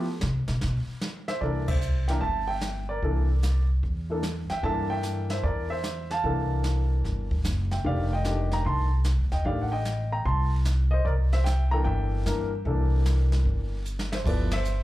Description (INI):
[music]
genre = jazz piano trio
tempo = 149 BPM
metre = 4/4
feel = swing 66% on 8ths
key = C mixolydian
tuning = A4 = 440 Hz
[part]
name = warm grand piano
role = melody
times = 0.0-14.8 s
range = Eb3 to C6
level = -30 LUFS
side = equal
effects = slapback echo
[part]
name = upright bass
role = bass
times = 0.2-14.8 s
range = F1 to C3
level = -25 LUFS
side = equal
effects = none
[part]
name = jazz brush drum kit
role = drums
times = 0.2-14.8 s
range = brushed snare drum, crash cymbal, hi-hat, kick drum, ride cymbal, snare drum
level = -33 LUFS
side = equal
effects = none
[sound]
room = little or no reverb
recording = live gig heard through the venue's PA, club reverb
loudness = -24 LUFS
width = side -16 dB against mid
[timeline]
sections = 0.0-1.4 A section; 1.4-14.8 B section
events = upright bass solo 0.0-1.4; band accent 1.6, 14.5; drum fill 13.9-14.3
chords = 0.0 N.C.; 1.4 C13; 7.8 F13; 11.1 C13; 14.3 G13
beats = 0.21 0.61 1.01 | 1.42 1.82 2.22 2.62 | 3.02 3.42 3.83 4.23 | 4.63 5.03 5.43 5.83 | 6.24 6.64 7.04 7.44 | 7.84 8.24 8.65 9.05 | 9.45 9.85 10.25 10.65 | 11.05 11.45 11.85 12.25 | 12.65 13.05 13.45 13.85 | 14.25 14.65